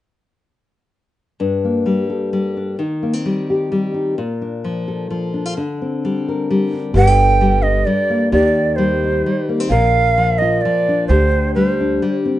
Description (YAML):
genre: folk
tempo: 130 BPM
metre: 3/4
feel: straight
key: G minor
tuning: A4 = 438 Hz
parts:
  - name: nylon-string guitar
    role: accompaniment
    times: 1.4-12.4 s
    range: G2 to Bb4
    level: -18 LUFS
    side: left 2 dB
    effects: none
  - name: upright bass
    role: bass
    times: 6.9-12.0 s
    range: G1 to Eb2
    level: -18 LUFS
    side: right 1 dB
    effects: none
  - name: bright shakuhachi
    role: melody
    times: 7.0-12.2 s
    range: C5 to G5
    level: -17 LUFS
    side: right 4 dB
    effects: none
room: moderate studio reverb, RT60 0.7 s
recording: rough home demo mix, nothing above 10.5 kHz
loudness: -15 LUFS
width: side -14 dB against mid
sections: 1.4-7.0 A section; 7.0-12.4 B section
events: none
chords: 1.4 Gmadd9; 2.8 Eb6; 4.2 Bb; 5.6 D7sus4; 7.0 Gmadd9; 8.3 Eb6; 9.7 Bb; 11.1 D7sus4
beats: | 1.40 1.86 2.32 | 2.78 3.25 3.71 | 4.17 4.64 5.10 | 5.56 6.03 6.49 | 6.95 7.41 7.87 | 8.34 8.80 9.26 | 9.72 10.18 10.64 | 11.11 11.57 12.03